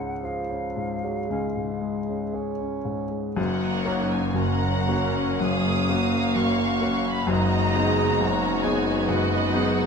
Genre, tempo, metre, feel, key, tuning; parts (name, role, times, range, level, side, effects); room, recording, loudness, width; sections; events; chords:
classical, romantic movement for piano and orchestra; 55-70 BPM; 4/4; rubato; F# major; A4 = 440 Hz
clear grand piano; melody; 0.0-9.9 s; F#1 to G#4; -25 LUFS; left 2 dB
mellow hollow silver concert flute; second line; 0.0-2.4 s; E#5 to F#5; -34 LUFS; right 1 dB
dark bassoon; accompaniment; 0.2-3.4 s; E#3 to C#4; -34 LUFS; right 6 dB
warm clarinet; second line; 1.3-1.7 s; C#4; -40 LUFS; equal
muted studio violin section; melody; 3.4-9.9 s; F#5 to D#6; -31 LUFS; equal
muted chamber violin section; second line; 3.4-9.9 s; F#4 to F#5; -30 LUFS; left 2 dB
muted symphonic viola section; accompaniment; 3.4-9.9 s; G#3 to F#4; -30 LUFS; right 3 dB
dark French horn section; sustained chords; 3.4-9.9 s; G#3 to D#4; -30 LUFS; left 3 dB
muted chamber cello section; bass; 3.4-9.9 s; F#2; -33 LUFS; right 5 dB
muted studio double bass section; bass; 3.4-9.9 s; F#1; -32 LUFS; right 6 dB
moderate scoring stage reverb, RT60 2.0 s; close, detailed microphones; -22 LUFS; side -6 dB against mid
0.0-3.4 A section; 3.4-9.9 A section
0.0 C#; 3.4 F#; 7.3 G#m7/F#